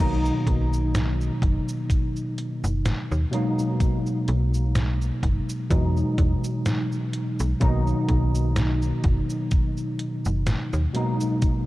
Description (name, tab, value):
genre	vaporwave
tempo	63 BPM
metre	4/4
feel	swing 55% on 16ths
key	B major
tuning	A4 = 440 Hz
part	tine electric piano	accompaniment	0.0-11.7 s	B2 to D#4	-25 LUFS	equal	fast stereo tremolo, ensemble chorus
part	slap-like FM bass	bass	0.0-10.9 s	F#1 to E2	-25 LUFS	equal	none
part	detuned 8-bit digital drum machine	drums	0.0-11.6 s	cabasa, crash cymbal, hi-hat, snare drum	-30 LUFS	equal	studio reverb
part	electronic kick drum	drums	0.5-11.6 s	none	-23 LUFS	equal	studio reverb
room	light reverb, digital ambience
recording	dark, warm production, cassette tape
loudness	-21 LUFS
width	side -17 dB against mid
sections	0.0-11.7 A section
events	none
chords	0.0 Bmaj7; 3.3 G#m9/B; 5.7 Emaj9; 7.6 Bmaj7; 10.9 G#m9/B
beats	| 0.00 0.95 1.90 2.85 | 3.81 4.76 5.71 6.66 | 7.62 8.57 9.52 10.47 | 11.43